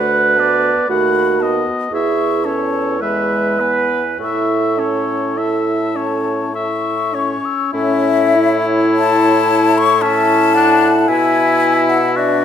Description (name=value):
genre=classical, slow romantic movement for wind quintet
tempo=47-59 BPM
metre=3/4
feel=rubato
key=A major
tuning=A4 = 440 Hz
part: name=mellow hollow concert flute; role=melody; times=0.0-12.4 s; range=E5 to E6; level=-19 LUFS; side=left 8 dB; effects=none
part: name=warm oboe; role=second line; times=0.0-12.4 s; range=C#4 to F#5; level=-20 LUFS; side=left 4 dB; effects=none
part: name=clear French horn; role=accompaniment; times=0.0-12.4 s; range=G#3 to E4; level=-21 LUFS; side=equal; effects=none
part: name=mellow clarinet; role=accompaniment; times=0.0-12.4 s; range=F#4 to F#5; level=-19 LUFS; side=right 6 dB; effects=none
part: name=mellow bassoon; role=bass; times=0.0-12.4 s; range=D2 to B2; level=-20 LUFS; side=right 1 dB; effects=none
room=moderate recital hall reverb, RT60 1.6 s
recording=none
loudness=-13 LUFS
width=side -8 dB against mid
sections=0.0-7.7 A section; 7.7-12.4 A section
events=none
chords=0.0 Bm7/D; 0.9 B7/D#; 1.9 A/E; 3.0 E; 4.2 A; 11.1 E7/B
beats=| 0.90 1.92 3.02 | 4.20 5.38 6.55 | 7.74 8.96 10.03 | 11.08 12.17